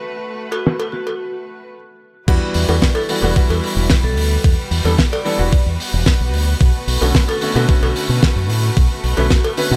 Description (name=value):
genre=nu-disco, nu disco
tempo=111 BPM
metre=4/4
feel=straight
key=E dorian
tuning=A4 = 440 Hz
part: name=clear baby grand piano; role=accompaniment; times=0.0-9.8 s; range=D3 to B4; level=-25 LUFS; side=equal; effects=sidechain pumping
part: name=muted studio violin section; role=sustained chords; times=0.0-9.8 s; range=G3 to B4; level=-31 LUFS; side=equal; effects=sidechain pumping
part: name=vibraphone with medium hard mallets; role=melody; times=0.5-9.8 s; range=F#4 to D5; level=-30 LUFS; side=equal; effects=dub echo
part: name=cowbell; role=percussion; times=0.5-9.6 s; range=none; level=-27 LUFS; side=equal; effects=none
part: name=damped 70s drum kit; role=drums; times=0.7-9.7 s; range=crash cymbal, hi-hat, snare drum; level=-24 LUFS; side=equal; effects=low-pass filter on cymbals, low-pass filter on hats, low-pass filter on snare, low-pass filter on room
part: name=fingered electric bass with an envelope filter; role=bass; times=2.3-9.8 s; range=E1 to B2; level=-20 LUFS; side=equal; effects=sidechain pumping
part: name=electronic kick drum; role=drums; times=2.3-9.4 s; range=none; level=-17 LUFS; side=equal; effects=none
room=small room ambience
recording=none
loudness=-17 LUFS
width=mono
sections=0.0-2.3 A section; 2.3-9.8 B section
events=stop 1.7-2.3; drop 2.3-9.8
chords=0.0 Bm7; 2.3 Em7; 6.6 Bm7